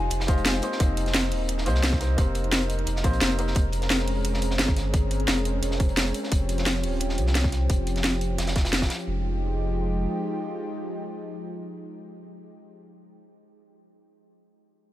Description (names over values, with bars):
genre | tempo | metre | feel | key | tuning
liquid drum and bass | 174 BPM | 4/4 | straight | F minor | A4 = 442 Hz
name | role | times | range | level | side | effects
warm grand piano | accompaniment | 0.0-3.6 s | G3 to C5 | -32 LUFS | left 2 dB | tape echo
lush unison pad | sustained chords | 0.0-12.6 s | F3 to Bb4 | -31 LUFS | equal | chorus, sidechain pumping
warm sub bass | bass | 0.0-10.1 s | Eb1 to C2 | -26 LUFS | equal | none
crunchy breakbeat drum kit | drums | 0.1-9.1 s | hi-hat, snare drum | -34 LUFS | equal | high-pass filter on hats, high-pass filter on snare, high-pass filter on room
garage drum kit | drums | 0.1-9.0 s | hi-hat, snare drum | -27 LUFS | equal | overdrive
electronic kick drum | drums | 0.3-8.9 s | none | -23 LUFS | equal | overdrive
room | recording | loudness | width
small room ambience | none | -22 LUFS | side -14 dB against mid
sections
0.0-9.1 A section; 9.1-11.8 B section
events
none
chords
0.0 Fm9; 0.6 Cm7; 3.6 Bbm9/F; 6.1 Eb13; 9.1 Fm9